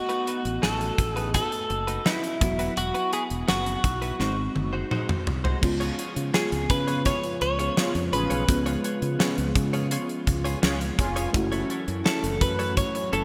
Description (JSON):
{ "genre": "1980s-style pop", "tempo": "84 BPM", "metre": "4/4", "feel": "straight", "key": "unclear", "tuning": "A4 = 440 Hz", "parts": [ { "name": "direct-recorded clean electric guitar", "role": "melody", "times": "0.0-13.2 s", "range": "E4 to C#5", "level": "-31 LUFS", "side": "equal", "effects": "subtle chorus" }, { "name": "FM electric piano with soft pad layer", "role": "accompaniment", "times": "0.0-13.2 s", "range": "F#3 to D#5", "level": "-34 LUFS", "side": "equal", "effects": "chorus" }, { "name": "direct-recorded clean electric guitar", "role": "riff", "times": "0.1-13.2 s", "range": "G#3 to C#5", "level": "-37 LUFS", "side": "equal", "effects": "lush chorus, digital delay" }, { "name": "gated 80s drum kit", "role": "drums", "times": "0.1-13.2 s", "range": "crash cymbal, hi-hat, kick drum, snare drum, toms", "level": "-29 LUFS", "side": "equal", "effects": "gated reverb" }, { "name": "modern bright fingered electric bass", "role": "bass", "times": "0.5-13.2 s", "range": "E1 to C#3", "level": "-32 LUFS", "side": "equal", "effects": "none" }, { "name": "brassy analog pad", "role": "sustained chords", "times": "5.6-13.2 s", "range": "C#3 to F#4", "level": "-36 LUFS", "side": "equal", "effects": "chorus" }, { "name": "mellow synth brass", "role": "stabs", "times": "7.8-11.3 s", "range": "C#4 to G#4", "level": "-36 LUFS", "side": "equal", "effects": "chorus, phaser" } ], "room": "moderate lush hall reverb, RT60 3.0 s", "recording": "bright 1980s-style digital production", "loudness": "-26 LUFS", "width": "mono", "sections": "0.0-5.6 A section; 5.6-13.2 B section", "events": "drum fill 4.2-5.6", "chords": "0.0 B7; 2.4 Esus2; 4.2 G#7; 5.6 C#7; 11.3 F#m7", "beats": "0.63 1.34 2.06 | 2.77 3.49 4.20 4.91 | 5.63 6.34 7.06 7.77 | 8.49 9.20 9.91 10.63 | 11.34 12.06 12.77" }